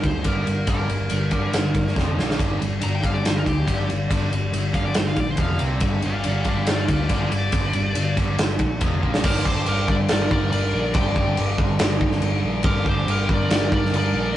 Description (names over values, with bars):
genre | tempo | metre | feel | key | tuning
hard rock | 140 BPM | 4/4 | straight | G minor | A4 = 440 Hz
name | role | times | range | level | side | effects
smooth overdriven lead guitar | melody | 0.0-14.4 s | F4 to Bb5 | -29 LUFS | left 2 dB | none
distorted electric guitar | riff | 0.0-14.4 s | F2 to C4 | -29 LUFS | right 2 dB | distortion
tight distorted guitar | riff | 0.0-14.4 s | F2 to C4 | -31 LUFS | left 4 dB | distortion
hollow-body short-scale picked electric bass | bass | 0.0-14.3 s | F1 to D2 | -25 LUFS | equal | none
big rock drum kit | drums | 0.0-14.0 s | crash cymbal, kick drum, ride cymbal, snare drum | -22 LUFS | equal | none
nasal lead guitar with a parked wah | second line | 9.2-14.3 s | G4 to D5 | -29 LUFS | right 1 dB | overdrive
room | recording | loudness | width
moderate studio reverb, RT60 0.7 s | rough rehearsal-room recording, nothing above 11.0 kHz | -19 LUFS | side -13 dB against mid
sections
0.0-9.2 A section; 9.2-14.4 B section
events
lead electric guitar solo 0.0-9.2; drum fill 2.0-2.4, 9.0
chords
0.0 Gm; 2.0 F5; 2.2 Bb5; 2.4 G5; 5.4 F5; 5.6 C5; 5.8 G5; 8.8 F5; 9.0 Bb5; 9.2 Gm